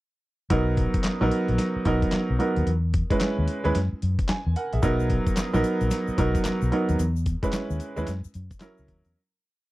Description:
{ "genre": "R&B, new jack swing", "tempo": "111 BPM", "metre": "4/4", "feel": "swing 62% on 16ths", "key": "B major", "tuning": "A4 = 440 Hz", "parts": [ { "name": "clear grand piano", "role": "accompaniment", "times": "0.5-9.2 s", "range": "F#3 to G#5", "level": "-25 LUFS", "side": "right 2 dB", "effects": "none" }, { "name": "vintage muted fingered electric bass", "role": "bass", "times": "0.5-9.1 s", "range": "A#1 to F#2", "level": "-25 LUFS", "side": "left 1 dB", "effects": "none" }, { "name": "dusty soul sampler-style drum kit", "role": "drums", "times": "0.5-9.1 s", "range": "handclaps, hi-hat, kick drum, snare drum", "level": "-26 LUFS", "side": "left 1 dB", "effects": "overdrive" }, { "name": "egg shaker", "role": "percussion", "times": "4.8-9.1 s", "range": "none", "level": "-48 LUFS", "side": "left 26 dB", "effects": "none" } ], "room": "little or no reverb", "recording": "dry, close 1970s-style studio recording", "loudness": "-22 LUFS", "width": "side -18 dB against mid", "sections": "0.5-9.2 verse", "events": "fade-out 7.0-9.2", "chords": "0.5 Bmaj7; 2.7 E6; 3.7 F#7; 4.8 Bmaj7; 7.0 E6; 8.1 F#7" }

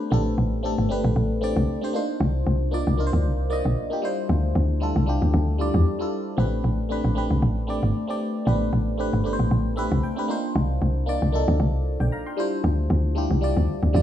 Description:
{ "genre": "amapiano", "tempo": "115 BPM", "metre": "4/4", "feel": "swing 55% on 16ths", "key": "A minor", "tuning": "A4 = 442 Hz", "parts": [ { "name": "barking FM electric piano", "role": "accompaniment", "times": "0.0-14.0 s", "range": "G3 to C6", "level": "-26 LUFS", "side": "equal", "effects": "chorus, phaser" }, { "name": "woody log drum bass", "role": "bass", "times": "0.1-14.0 s", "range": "G1 to E2", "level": "-21 LUFS", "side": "equal", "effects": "none" } ], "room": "digital ambience", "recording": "small room ambience", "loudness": "-21 LUFS", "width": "side -11 dB against mid", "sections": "0.0-14.0 A section", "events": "FM electric piano fill 9.5-10.6", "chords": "0.0 Am11; 1.9 Cm11; 4.0 Dm11; 6.4 Am11; 10.3 Cm11; 12.4 Dm11" }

